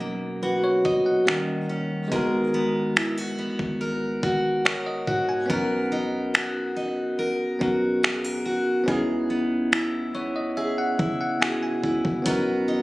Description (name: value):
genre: contemporary R&B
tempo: 71 BPM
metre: 4/4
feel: straight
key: B major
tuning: A4 = 440 Hz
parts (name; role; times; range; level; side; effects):
- bell-like tine electric piano; accompaniment; 0.0-12.8 s; F#3 to G#5; -26 LUFS; equal; medium stereo tremolo
- fingerpicked steel-string acoustic guitar; arpeggios; 0.0-12.8 s; B2 to A#4; -26 LUFS; equal; slapback echo
- soft 808-style bass; bass; 0.0-12.8 s; D#1 to C#3; -35 LUFS; equal; none
- dusty soul sampler-style drum kit; drums; 0.9-12.5 s; finger snaps, hi-hat, kick drum; -25 LUFS; equal; none
room: moderate spring reverb, RT60 2.8 s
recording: recorded on a phone in the room, studio reverb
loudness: -22 LUFS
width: side -20 dB against mid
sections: 0.0-12.8 A section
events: tine electric piano fill 9.7-12.3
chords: 0.0 Bmaj7; 1.3 D#7; 2.1 G#m9; 5.5 Bmaj7; 8.9 C#m7; 12.3 Bmaj7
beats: 0.43 1.27 | 2.12 2.96 3.81 4.65 | 5.50 6.34 7.19 8.03 | 8.88 9.72 10.57 11.41 | 12.26